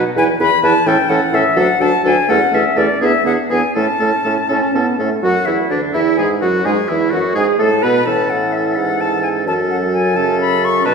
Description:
quick classical-period movement for wind quintet; 85 BPM (dotted quarters); 6/8; rubato; A major; A4 = 437 Hz
clear oboe; second line; 0.0-10.9 s; D4 to B4; -22 LUFS; left 2 dB
bright clarinet; accompaniment; 0.0-10.9 s; C#4 to B4; -21 LUFS; right 5 dB
mellow French horn; accompaniment; 0.0-10.9 s; C#3 to C#4; -20 LUFS; right 1 dB
warm bassoon; bass; 0.0-10.9 s; D2 to B2; -18 LUFS; right 2 dB
silver concert flute; melody; 0.2-10.9 s; D5 to C#6; -18 LUFS; left 4 dB
wet recital hall reverb, RT60 1.7 s; heard from further back in the room; -13 LUFS; side -5 dB against mid
0.0-5.2 A section; 5.2-10.9 A section
0.2 E5; 0.9 A; 1.6 D; 2.3 A/E; 3.0 E7; 3.8 A; 5.2 E9; 6.7 E; 8.1 A; 9.5 F#m

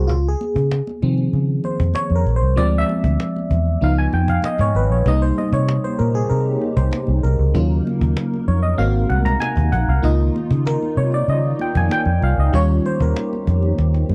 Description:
polished 1980s jazz-funk pop; 96 BPM; 4/4; straight; A4 = 440 Hz
FM electric piano; accompaniment; 0.0-14.1 s; Eb3 to Bb5; -24 LUFS; equal; lush chorus
vintage muted fingered electric bass; bass; 0.0-14.1 s; Ab1 to Db3; -20 LUFS; equal
cajon; drums; 0.1-14.1 s; -30 LUFS; equal
congas; percussion; 0.1-14.1 s; -36 LUFS; equal
hollow soft pad; sustained chords; 5.1-14.1 s; C3 to Bb4; -29 LUFS; equal; ensemble chorus, phaser
little or no reverb; dry, close 1970s-style studio recording; -19 LUFS; mono
0.0-14.1 A section
FM electric piano solo 0.0-14.1; drum fill 13.8-14.1
0.1 Dbmaj7; 2.6 Dm7b5; 3.8 Db9; 5.1 Cm7; 7.6 Ebm7; 8.8 Ab7; 10.0 Db69; 12.5 Eb7

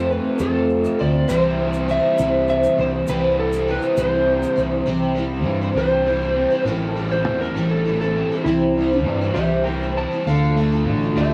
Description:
folk rock and heartland rock; 67 BPM (dotted quarters); 6/8; straight; C major; A4 = 440 Hz
electric slide guitar; melody; 0.0-11.3 s; E4 to A5; -24 LUFS; equal; cassette tape, analog delay
picked twelve-string acoustic guitar; accompaniment; 0.0-11.3 s; A2 to C5; -25 LUFS; equal; ensemble chorus
raw garage guitar; riff; 0.0-11.3 s; F2 to F4; -27 LUFS; equal; overdrive
fingered electric bass; bass; 0.0-11.3 s; A1 to G2; -26 LUFS; equal
egg shaker; percussion; 0.1-4.6 s; -46 LUFS; equal
moderate studio reverb, RT60 0.6 s; home recording on cassette; -20 LUFS; mono
0.0-4.9 A section; 4.9-11.3 B section
electric slide guitar solo 4.9-11.3
0.0 F; 1.3 C; 6.7 Am7; 8.5 C; 10.3 Dm

